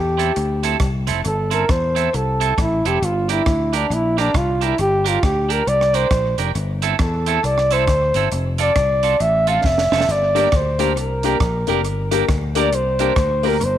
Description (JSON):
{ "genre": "ska", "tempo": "136 BPM", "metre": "4/4", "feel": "swing 61% on 8ths", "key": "G dorian", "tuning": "A4 = 440 Hz", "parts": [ { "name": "trumpet with bucket mute", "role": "melody", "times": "0.0-13.8 s", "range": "D4 to F5", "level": "-19 LUFS", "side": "equal", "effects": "none" }, { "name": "fingered electric bass", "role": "bass", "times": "0.0-13.8 s", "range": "F1 to E2", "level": "-22 LUFS", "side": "left 1 dB", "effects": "none" }, { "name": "clean electric guitar", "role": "accompaniment", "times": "0.2-13.6 s", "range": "C4 to Bb4", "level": "-24 LUFS", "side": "right 12 dB", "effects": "none" }, { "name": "compact cocktail drum kit", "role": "drums", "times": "0.2-13.7 s", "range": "hi-hat, kick drum, rim click, snare drum", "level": "-23 LUFS", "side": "right 1 dB", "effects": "tape echo" }, { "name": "dark upright piano", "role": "stabs", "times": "10.3-13.5 s", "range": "Bb3 to Bb4", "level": "-23 LUFS", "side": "left 13 dB", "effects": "none" } ], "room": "moderate plate reverb, RT60 1.9 s, small room ambience", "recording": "1960s-style stereo with parts hard left and right", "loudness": "-16 LUFS", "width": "side -11 dB against mid", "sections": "0.0-13.8 A section", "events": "muted trumpet solo 0.0-13.8; drum fill 9.6-10.1", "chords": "0.0 Am; 3.0 Gm; 6.6 Am/G; 8.3 F; 10.1 Gm", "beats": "0.37 0.81 | 1.25 1.69 2.14 2.58 | 3.02 3.46 3.90 4.35 | 4.79 5.23 5.67 6.11 | 6.55 7.00 7.44 7.88 | 8.32 8.76 9.20 9.64 | 10.08 10.53 10.96 11.41 | 11.85 12.29 12.73 13.17 | 13.61" }